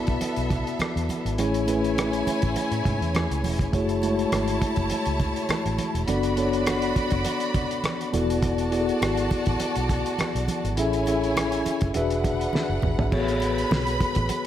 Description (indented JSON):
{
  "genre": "lush 1970s-style soul",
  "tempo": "102 BPM",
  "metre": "4/4",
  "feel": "swing 54% on 16ths",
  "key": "unclear",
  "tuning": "A4 = 440 Hz",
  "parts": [
    { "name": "rich studio violin section", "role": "second line", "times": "0.0-14.5 s", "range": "B3 to B5", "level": "-30 LUFS", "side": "equal", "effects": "none" },
    { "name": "mellow tine electric piano", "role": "accompaniment", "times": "0.0-14.5 s", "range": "G#3 to E5", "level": "-26 LUFS", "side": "left 2 dB", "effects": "medium stereo tremolo" },
    { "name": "vintage muted fingered electric bass", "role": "bass", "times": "0.1-14.3 s", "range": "E1 to A2", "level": "-29 LUFS", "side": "equal", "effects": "none" },
    { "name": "cloth-damped thuddy drum kit", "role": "drums", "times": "0.1-14.4 s", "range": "crash cymbal, hi-hat, kick drum, rim click, snare drum, toms", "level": "-28 LUFS", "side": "equal", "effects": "none" },
    { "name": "congas", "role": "percussion", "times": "0.2-14.4 s", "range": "none", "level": "-36 LUFS", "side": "right 4 dB", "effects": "none" }
  ],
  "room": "light reverb, small room reverb",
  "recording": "none",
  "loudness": "-22 LUFS",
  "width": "side -11 dB against mid",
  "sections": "0.0-13.1 A section; 13.1-14.5 B section",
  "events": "drum fill 12.5-13.1",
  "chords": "0.0 E9sus4; 1.4 Amaj7; 3.7 F#m9; 6.1 Bm7/F#; 8.1 E9sus4; 10.8 Amaj7; 11.9 E9; 13.1 Amaj13",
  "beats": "0.21 0.80 | 1.39 1.97 2.56 3.15 | 3.73 4.32 4.91 5.49 | 6.08 6.67 7.25 7.84 | 8.43 9.01 9.60 10.19 | 10.78 11.36 11.95 12.54 | 13.12 13.71 14.30"
}